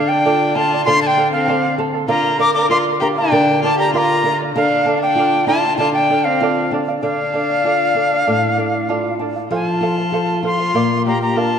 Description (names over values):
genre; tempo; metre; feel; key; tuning
andean folk, Andean ensemble; 97 BPM; 2/4; straight; D minor; A4 = 439 Hz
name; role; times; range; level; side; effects
bright reedy quena; melody; 0.0-11.6 s; F5 to D6; -17 LUFS; equal; none
rich violin; second line; 0.0-11.6 s; C4 to Bb4; -21 LUFS; left 3 dB; none
charango; accompaniment; 0.0-11.6 s; A4 to A5; -21 LUFS; right 4 dB; none
nylon-string guitar; accompaniment; 0.0-11.6 s; A2 to C5; -22 LUFS; left 2 dB; none
room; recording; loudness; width
wet concert hall reverb, RT60 1.9 s; dark, warm production; -14 LUFS; side -7 dB against mid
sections
0.0-7.0 A section; 7.0-11.6 B section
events
none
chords
0.0 Dm; 0.9 F/D; 2.1 Bb/D; 4.6 Dm; 9.5 F; 10.7 Bb